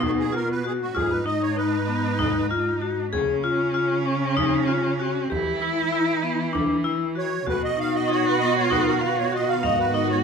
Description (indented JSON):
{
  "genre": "contemporary instrumental, chamber music in an uneven meter",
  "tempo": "194 BPM (eighths)",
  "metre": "7/8",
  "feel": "straight",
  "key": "B major",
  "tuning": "A4 = 439 Hz",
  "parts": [
    { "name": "musette accordion", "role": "melody", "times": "0.0-2.5, 7.2-10.2 s", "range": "F#4 to E#5", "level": "-28 LUFS", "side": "right 7 dB", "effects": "none" },
    { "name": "warm cello", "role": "second line", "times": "0.0-10.2 s", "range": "B3 to F#4", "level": "-26 LUFS", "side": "right 3 dB", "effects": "none" },
    { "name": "vibraphone with hard mallets", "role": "arpeggios", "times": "0.0-10.2 s", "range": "B3 to E#5", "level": "-24 LUFS", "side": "left 5 dB", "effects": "none" },
    { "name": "rich cello", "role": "bass", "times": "0.0-10.2 s", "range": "G#2 to E3", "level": "-29 LUFS", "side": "right 5 dB", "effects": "none" },
    { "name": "frame drum", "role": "percussion", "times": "0.0-9.9 s", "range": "none", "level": "-33 LUFS", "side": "right 3 dB", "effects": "none" },
    { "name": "shimmering ambient pad", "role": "sustained chords", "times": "8.5-10.2 s", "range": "D#3 to G#4", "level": "-34 LUFS", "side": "equal", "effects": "chorus, built-in reverb, phaser" }
  ],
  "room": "light reverb",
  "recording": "minimal, uncompressed stereo recording",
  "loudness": "-21 LUFS",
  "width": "side -6 dB against mid",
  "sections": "0.0-10.2 A section",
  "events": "none",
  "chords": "0.0 B; 1.0 G#m; 3.1 C#; 5.3 N.C.; 7.5 B; 9.6 G#m"
}